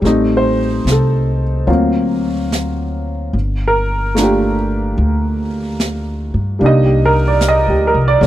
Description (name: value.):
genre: jazz ballad.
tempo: 73 BPM.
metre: 4/4.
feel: swing 67% on 8ths.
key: unclear.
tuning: A4 = 440 Hz.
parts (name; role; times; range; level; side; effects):
warm upright piano; accompaniment; 0.0-8.3 s; F#3 to Eb5; -15 LUFS; right 1 dB; none.
upright bass; bass; 0.0-8.3 s; G1 to G2; -17 LUFS; equal; none.
jazz brush drum kit; drums; 0.0-8.3 s; brushed snare drum, hi-hat, snare drum; -23 LUFS; right 1 dB; none.
room: studio ambience.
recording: dry, close 1970s-style studio recording.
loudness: -13 LUFS.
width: side -13 dB against mid.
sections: 0.0-8.3 A section.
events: none.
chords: 0.0 Am7b5; 1.7 D7alt; 3.3 Gm7; 6.6 Cm9.